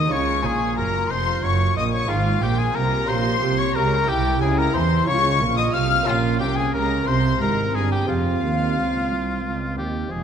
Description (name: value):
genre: classical, baroque-style concerto movement with solo episodes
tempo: 60 BPM (dotted quarters)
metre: 6/8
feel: straight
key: F minor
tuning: A4 = 439 Hz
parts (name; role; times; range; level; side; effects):
- bright oboe; melody; 0.0-10.2 s; F4 to F5; -26 LUFS; left 2 dB; none
- rich chamber violin section; melody; 0.0-10.2 s; F5 to F6; -29 LUFS; left 8 dB; none
- warm chamber violin section; second line; 0.0-10.2 s; F4 to F6; -27 LUFS; left 4 dB; none
- dark chamber viola section; accompaniment; 0.0-10.2 s; Ab3 to G4; -28 LUFS; right 3 dB; none
- lute; accompaniment; 0.0-10.2 s; Eb2 to F4; -31 LUFS; equal; none
- dark chamber cello section; bass; 0.0-10.2 s; C2 to E3; -24 LUFS; right 3 dB; none
- rich chamber double bass section; bass; 0.0-10.2 s; F1 to E2; -26 LUFS; right 2 dB; none
room: moderate concert hall reverb, RT60 2.2 s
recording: dark, warm production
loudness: -19 LUFS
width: side -8 dB against mid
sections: 0.0-10.1 A section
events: none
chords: 0.1 Db; 2.1 Fm/Ab; 3.1 Gm7b5/Bb; 4.1 C7; 5.1 Db; 6.1 Bbm; 7.1 C7; 8.1 Fm